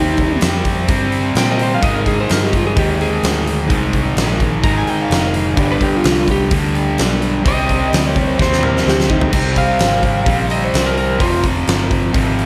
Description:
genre	blues rock power trio and southern rock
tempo	128 BPM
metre	4/4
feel	straight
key	C minor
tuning	A4 = 441 Hz
part	lightly driven lead guitar	second line	0.0-11.4 s	Eb4 to Bb5	-23 LUFS	equal	none
part	distorted electric guitar	riff	0.0-12.5 s	F2 to C4	-20 LUFS	equal	distortion
part	vintage muted fingered electric bass	bass	0.0-12.5 s	F1 to Bb2	-22 LUFS	equal	none
part	huge arena drum kit	drums	0.2-12.5 s	crash cymbal, hi-hat, kick drum, snare drum, toms	-21 LUFS	equal	none
room	moderate scoring stage reverb, RT60 1.4 s, studio reverb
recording	big arena sound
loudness	-16 LUFS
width	mono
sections	0.0-9.3 A section; 9.3-12.5 A section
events	lead electric guitar solo 0.0-12.5; drum fill 8.4-9.3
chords	0.0 Cm7; 1.8 Abmaj7; 5.6 G; 7.5 Cm; 9.3 C5; 11.2 Fm

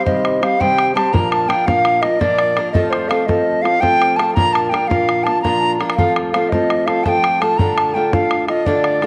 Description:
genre	celtic folk, Celtic slip jig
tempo	112 BPM (dotted quarters)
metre	9/8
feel	straight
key	unclear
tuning	A4 = 440 Hz
part	bright wooden flute	melody	0.0-9.1 s	C5 to Bb5	-19 LUFS	equal	none
part	fingerpicked steel-string acoustic guitar	accompaniment	0.0-9.1 s	Bb2 to C5	-21 LUFS	equal	none
part	bodhran	percussion	0.1-9.1 s	none	-24 LUFS	equal	none
room	wet echo chamber reverb, RT60 1.7 s, small room ambience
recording	none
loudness	-16 LUFS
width	mono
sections	0.0-9.1 A section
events	none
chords	0.0 Cm; 1.1 Bb; 2.8 F; 4.4 Bb; 6.0 F; 7.6 Dm

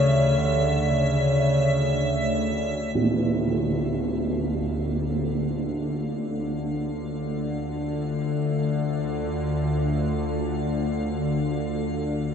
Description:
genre	dark ambient drone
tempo	free time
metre	none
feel	none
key	D harmonic minor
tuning	A4 = 443 Hz
part	dark bass clarinet	melody	0.0-2.4 s	C#3 to D3	-24 LUFS	equal	diffuse ambient delay
part	dark analog pad	sustained chords	0.0-12.3 s	F4 to D5	-30 LUFS	left 1 dB	lush chorus
part	bowed-like drone	drone	0.0-12.3 s	D2 to D3	-26 LUFS	left 1 dB	built-in reverb, phaser
part	icy glass pad	texture	0.0-12.3 s	E5 to F5	-34 LUFS	right 3 dB	chorus, built-in reverb
part	tam-tam	percussion	3.0-3.2 s	none	-28 LUFS	right 4 dB	low-pass filter on cymbals
room	wet huge ambient reverb, RT60 7.6 s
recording	dark, warm production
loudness	-23 LUFS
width	side -7 dB against mid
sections	0.0-3.0 A section; 3.0-12.3 B section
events	fade-in on ambient pad 3.0-12.3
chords	0.0 A/D; 3.0 Dm

